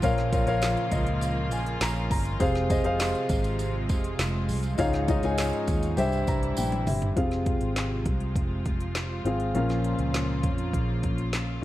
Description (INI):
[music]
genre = piano-driven pop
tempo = 101 BPM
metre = 4/4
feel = straight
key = F minor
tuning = A4 = 440 Hz
[part]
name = dark grand piano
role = accompaniment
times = 0.0-11.6 s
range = G2 to Bb5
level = -28 LUFS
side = left 1 dB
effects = none
[part]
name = warm studio string section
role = sustained chords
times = 0.0-11.6 s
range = C3 to F4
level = -35 LUFS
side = right 1 dB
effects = none
[part]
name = vintage muted fingered electric bass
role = bass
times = 0.0-11.6 s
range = F1 to F2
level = -29 LUFS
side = equal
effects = none
[part]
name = deep house drum kit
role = drums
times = 0.0-11.5 s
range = handclaps, hi-hat, kick drum, snare drum, toms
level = -30 LUFS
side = equal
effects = none
[part]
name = tambourine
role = percussion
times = 0.0-7.0 s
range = none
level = -44 LUFS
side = right 5 dB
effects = none
[sound]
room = light reverb, small room reverb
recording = dark, warm production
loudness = -24 LUFS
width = side -15 dB against mid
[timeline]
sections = 0.0-7.2 A section; 7.2-11.6 B section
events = grand piano fill 0.6-2.4, 6.0-7.2; drum fill 6.6-7.2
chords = 0.0 Bbm; 2.4 Fm; 4.8 Dbadd9; 6.0 C; 7.2 Fm; 9.5 Bbm